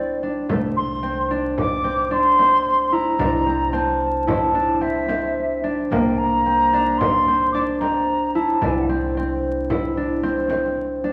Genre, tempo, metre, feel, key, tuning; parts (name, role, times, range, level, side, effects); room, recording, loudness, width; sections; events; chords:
contemporary instrumental, chamber music in an uneven meter; 111 BPM; 5/4; straight; C mixolydian; A4 = 440 Hz
mellow hollow silver concert flute; melody; 0.0-8.9 s; D5 to D6; -22 LUFS; equal
concert harp; arpeggios; 0.0-11.1 s; A3 to E4; -24 LUFS; equal
upright bass; bass; 0.0-11.1 s; C2; -34 LUFS; equal
frame drum; percussion; 0.2-11.1 s; -31 LUFS; equal
wet recital hall reverb, RT60 1.4 s; vinyl crackle; -20 LUFS; mono
0.0-11.1 A section
0.5 Am/C; 5.9 C9